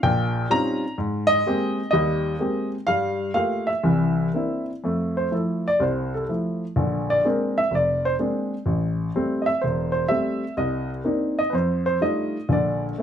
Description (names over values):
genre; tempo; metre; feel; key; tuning
solo jazz; 125 BPM; 4/4; swing 67% on 8ths, rubato; F major; A4 = 441 Hz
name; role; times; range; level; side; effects
warm baby grand piano; solo; 0.0-13.0 s; E1 to Bb5; -21 LUFS; equal; none
room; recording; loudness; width
moderate club reverb, RT60 0.6 s; none; -21 LUFS; side -9 dB against mid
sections
0.0-4.8 A section; 4.8-13.0 B section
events
grand piano solo 4.8-13.0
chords
0.0 Eb13; 1.0 Abmaj9; 2.9 Gm9; 3.8 C9; 4.8 Fmaj7; 6.8 Bb9; 8.7 Am7; 10.6 Cm9; 11.5 F13; 12.5 Bb